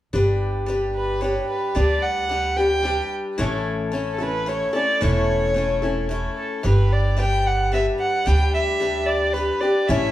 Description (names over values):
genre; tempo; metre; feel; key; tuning
country; 111 BPM; 3/4; straight; unclear; A4 = 440 Hz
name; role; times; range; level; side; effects
picked acoustic archtop guitar; accompaniment; 0.1-10.1 s; A2 to B4; -23 LUFS; left 2 dB; none
upright bass; bass; 0.1-10.1 s; E1 to D2; -23 LUFS; right 1 dB; none
dark fiddle; melody; 1.0-10.1 s; A4 to G5; -23 LUFS; right 1 dB; none
room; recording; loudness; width
moderate large studio reverb, RT60 0.8 s; band playing live in one room; -19 LUFS; side -14 dB against mid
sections
0.1-6.6 A section; 6.6-10.1 B section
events
none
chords
0.1 G; 3.4 A; 6.6 G